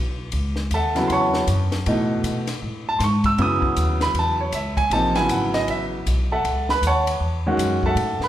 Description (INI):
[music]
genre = modal jazz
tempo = 157 BPM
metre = 4/4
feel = swing 64% on 8ths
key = F# dorian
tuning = A4 = 440 Hz
[part]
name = upright bass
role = bass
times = 0.0-8.2 s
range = G#1 to B2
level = -24 LUFS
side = equal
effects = none
[part]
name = compact cocktail drum kit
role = drums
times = 0.3-8.3 s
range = hi-hat, kick drum, ride cymbal, snare drum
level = -30 LUFS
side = left 2 dB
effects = none
[part]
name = warm concert grand piano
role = accompaniment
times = 0.7-8.3 s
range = B2 to E6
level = -21 LUFS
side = right 1 dB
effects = none
[sound]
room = moderate recital hall reverb, RT60 1.8 s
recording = recorded in a church or concert hall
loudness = -19 LUFS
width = side -12 dB against mid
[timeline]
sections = 0.0-8.3 A section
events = none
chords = 0.0 F#m7